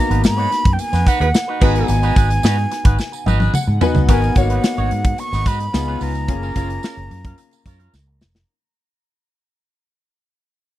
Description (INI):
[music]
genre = polished 1980s jazz-funk pop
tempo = 109 BPM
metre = 4/4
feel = straight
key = G# dorian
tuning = A4 = 436 Hz
[part]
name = breathy concert flute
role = melody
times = 0.0-7.9 s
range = F#5 to C#6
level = -24 LUFS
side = right 2 dB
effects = tape echo
[part]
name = bright grand piano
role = accompaniment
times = 0.0-8.5 s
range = A#3 to A#5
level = -24 LUFS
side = left 5 dB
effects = analog chorus
[part]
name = electric guitar with an envelope filter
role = riff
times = 0.1-8.4 s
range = C#4 to C#5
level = -26 LUFS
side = right 4 dB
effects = wide subtle chorus
[part]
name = fretless electric bass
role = bass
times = 0.1-8.4 s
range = E#1 to G#2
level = -19 LUFS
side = equal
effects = none
[part]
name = modern studio drum kit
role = drums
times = 0.1-8.5 s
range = crash cymbal, hi-hat, kick drum, snare drum, toms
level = -17 LUFS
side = equal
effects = none
[part]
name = tambourine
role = percussion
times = 0.2-8.3 s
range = none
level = -37 LUFS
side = right 18 dB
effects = none
[part]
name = mellow horn section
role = second line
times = 1.2-2.0 s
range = F#4 to B4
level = -22 LUFS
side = right 6 dB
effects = none
[sound]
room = little or no reverb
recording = dry, close 1970s-style studio recording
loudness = -15 LUFS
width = side -14 dB against mid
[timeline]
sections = 0.0-4.1 A section; 4.1-8.5 B section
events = drum fill 3.0-4.1, 7.9-8.5; grand piano fill 3.3-4.1; fade-out 4.1-8.5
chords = 0.0 G#m7; 5.7 C#7; 6.3 F#maj7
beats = 0.24 0.79 1.34 | 1.89 2.44 2.99 3.54 | 4.08 4.63 5.18 5.73 | 6.28 6.83 7.38 7.93